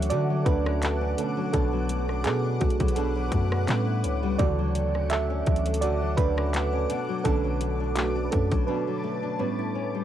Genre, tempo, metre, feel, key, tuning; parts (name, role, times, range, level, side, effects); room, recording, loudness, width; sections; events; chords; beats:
contemporary R&B; 84 BPM; 4/4; swing 54% on 16ths; B minor; A4 = 440 Hz
FM electric piano with auto-pan; accompaniment; 0.0-10.0 s; C#3 to E5; -28 LUFS; right 7 dB; cassette tape
granular cloud pad; sustained chords; 0.0-10.0 s; A4 to D6; -35 LUFS; left 1 dB; built-in reverb, cassette tape
nylon-string guitar; arpeggios; 0.0-10.0 s; A2 to E4; -32 LUFS; left 9 dB; cassette tape
warm 808-style bass; bass; 0.0-8.7 s; B1 to D3; -27 LUFS; left 1 dB
trap drum kit; drums; 0.0-8.7 s; handclaps, hi-hat, kick drum, rim click; -28 LUFS; left 1 dB; cassette tape
light reverb; home recording on cassette; -23 LUFS; side -11 dB against mid
0.0-10.0 A section
FM electric piano solo 0.0-10.0; break 8.7-10.0
0.0 Dmaj7; 1.2 Bm7; 3.7 A7; 4.4 Dmaj7; 6.9 Bm7; 9.4 A7
0.11 0.82 | 1.54 2.25 2.96 3.68 | 4.39 5.11 5.82 6.54 | 7.25 7.96 8.68 9.39